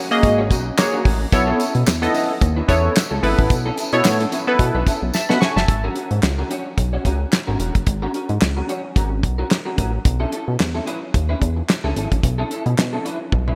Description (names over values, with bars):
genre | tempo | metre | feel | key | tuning
early-eighties boogie funk | 110 BPM | 4/4 | swing 56% on 16ths | G# phrygian | A4 = 441 Hz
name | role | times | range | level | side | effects
electric guitar at the edge of break-up | riff | 0.0-13.6 s | C#4 to C#5 | -29 LUFS | equal | ensemble chorus
funky polysynth comp | accompaniment | 0.1-5.8 s | A#3 to C#6 | -22 LUFS | equal | chorus
chorused synth bass | bass | 0.2-13.5 s | E1 to B2 | -23 LUFS | equal | none
damped 70s drum kit | drums | 0.2-13.6 s | handclaps, hi-hat, kick drum, snare drum, toms | -22 LUFS | equal | none
tambourine | percussion | 0.2-5.6 s | none | -35 LUFS | equal | none
room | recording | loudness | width
moderate plate reverb, RT60 2.5 s | bright 1980s-style digital production | -19 LUFS | mono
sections
0.0-5.7 A section; 5.7-13.6 B section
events
drum fill 5.1-5.7, 13.3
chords
0.0 G#9sus4; 1.3 B9sus4; 5.7 G#9sus4; 10.1 B9sus4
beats
0.23 0.78 | 1.32 1.87 2.41 2.96 | 3.50 4.05 4.60 5.14 | 5.69 6.23 6.78 7.32 | 7.87 8.41 8.96 9.51 | 10.05 10.60 11.14 11.69 | 12.23 12.78 13.32